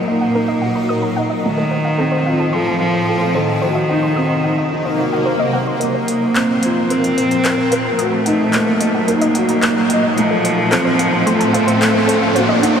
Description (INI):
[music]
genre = piano and strings electronica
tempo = 110 BPM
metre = 4/4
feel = straight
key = unclear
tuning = A4 = 438 Hz
[part]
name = warm cello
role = melody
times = 0.0-12.8 s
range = Eb3 to C4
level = -18 LUFS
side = right 1 dB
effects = analog delay
[part]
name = granular cloud pad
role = sustained chords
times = 0.0-12.8 s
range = A2 to Eb4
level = -22 LUFS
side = equal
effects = built-in reverb
[part]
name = soft round pluck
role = arpeggios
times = 0.0-12.8 s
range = A4 to Eb6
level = -24 LUFS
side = right 1 dB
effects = chorus, cassette tape, analog delay
[part]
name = dark concert grand piano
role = riff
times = 0.0-12.8 s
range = A3 to Eb5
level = -20 LUFS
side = left 1 dB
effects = ensemble chorus, analog delay
[part]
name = swell and riser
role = sound effects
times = 4.9-12.8 s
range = none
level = -24 LUFS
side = right 1 dB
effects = none
[part]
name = deep house drum kit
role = drums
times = 5.8-12.7 s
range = handclaps, hi-hat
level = -22 LUFS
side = left 1 dB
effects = high-pass filter on hats, high-pass filter on snare
[sound]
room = wet huge ambient reverb, RT60 8.6 s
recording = dreamy mix soaked in reverb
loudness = -14 LUFS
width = side -7 dB against mid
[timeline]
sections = 0.0-5.8 A section; 5.8-12.8 B section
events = swell 4.9-5.8; build-up 5.8-12.8; filter sweep on synth arpeggio sound 5.8-12.8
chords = 0.0 Ebm; 1.4 F; 3.6 Cdim; 5.8 Bbsus2; 8.0 Ebm; 10.2 F